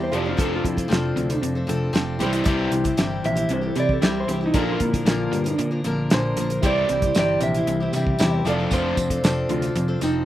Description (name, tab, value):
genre	folk rock and heartland rock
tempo	115 BPM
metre	4/4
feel	straight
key	C mixolydian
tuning	A4 = 440 Hz
part	electric guitar through a small old amp	melody	0.0-10.2 s	Eb4 to E5	-26 LUFS	right 1 dB	spring reverb, slapback echo
part	picked steel-string acoustic guitar	accompaniment	0.0-10.2 s	Bb2 to Bb4	-27 LUFS	left 3 dB	slapback echo
part	warm upright piano	accompaniment	0.0-10.2 s	D4 to D5	-34 LUFS	right 3 dB	none
part	tonewheel organ	sustained chords	0.0-10.2 s	F3 to D5	-35 LUFS	right 1 dB	none
part	crunchy overdriven guitar	riff	0.0-10.2 s	F2 to Bb3	-26 LUFS	equal	slapback echo
part	picked electric bass	bass	0.0-10.2 s	F1 to C3	-28 LUFS	equal	none
part	damped 70s drum kit	drums	0.1-10.1 s	hi-hat, kick drum, snare drum	-23 LUFS	equal	none
part	tambourine	percussion	6.6-10.1 s	none	-39 LUFS	right 5 dB	none
room	little or no reverb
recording	recorded outdoors, with no room sound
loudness	-19 LUFS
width	side -13 dB against mid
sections	0.0-10.2 A section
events	clean electric guitar solo 0.0-10.2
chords	0.1 F6; 2.2 C; 4.5 Bb; 6.6 C; 8.5 F6